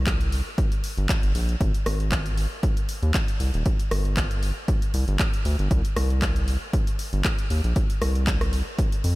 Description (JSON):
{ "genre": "deep house", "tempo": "117 BPM", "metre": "4/4", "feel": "swing 54% on 16ths", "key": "unclear", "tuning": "A4 = 440 Hz", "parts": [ { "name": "round analog bass", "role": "bass", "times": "0.0-9.2 s", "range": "Eb1 to F2", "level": "-23 LUFS", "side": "equal", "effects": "sidechain pumping" }, { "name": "electronic kick drum", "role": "drums", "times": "0.1-8.9 s", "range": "none", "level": "-24 LUFS", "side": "equal", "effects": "studio reverb" }, { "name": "house drum kit", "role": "drums", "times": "0.1-9.2 s", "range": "handclaps, hi-hat, rim click", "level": "-30 LUFS", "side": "equal", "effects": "studio reverb" } ], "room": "digital ambience", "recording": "none", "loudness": "-22 LUFS", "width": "side -19 dB against mid", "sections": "0.0-9.2 A section", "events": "none", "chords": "none", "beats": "0.07 0.58 1.09 | 1.61 2.12 2.63 3.15 | 3.66 4.17 4.68 5.20 | 5.71 6.22 6.73 7.25 | 7.76 8.27 8.79" }